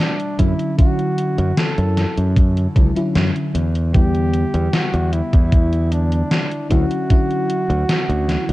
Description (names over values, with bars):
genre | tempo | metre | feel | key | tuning
vaporwave | 76 BPM | 4/4 | straight | D major | A4 = 440 Hz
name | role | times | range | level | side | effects
mellow flugelhorn | melody | 0.0-8.5 s | D4 to A4 | -25 LUFS | right 1 dB | tape echo
FM electric piano with soft pad layer | accompaniment | 0.0-8.5 s | B2 to F#4 | -23 LUFS | left 1 dB | lush chorus
gated 80s digital drum machine | drums | 0.2-8.5 s | hi-hat, snare drum | -22 LUFS | equal | gated reverb, gated reverb snare
modern bright fingered electric bass | bass | 0.4-8.5 s | C#2 to F#2 | -18 LUFS | equal | tube saturation
electronic kick drum | drums | 0.4-7.3 s | none | -14 LUFS | equal | none
room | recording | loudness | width
little or no reverb | dark, warm production, cassette tape | -15 LUFS | side -17 dB against mid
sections
0.0-8.5 A section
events
none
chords
0.4 Dmaj9/F#; 3.5 Em7; 6.7 Dmaj9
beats
0.00 | 0.79 1.58 2.37 3.16 | 3.94 4.74 5.52 6.31 | 7.10 7.89